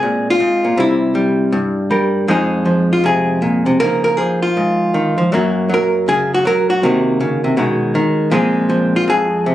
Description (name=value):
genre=solo jazz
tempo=159 BPM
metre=4/4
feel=swing 64% on 8ths, rubato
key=Bb minor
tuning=A4 = 440 Hz
part: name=hollow-body jazz guitar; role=solo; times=0.0-9.5 s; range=F2 to Bb4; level=-13 LUFS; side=equal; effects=none
room=light reverb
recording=recorded on a phone in the room, club reverb, compression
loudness=-13 LUFS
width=side -13 dB against mid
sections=0.0-9.5 A section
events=none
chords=0.0 Bb7sus2; 0.8 C7; 2.3 Fm7; 3.8 Db69; 5.3 Gb; 6.8 Cm7b5; 7.6 B69; 8.3 Bbsus2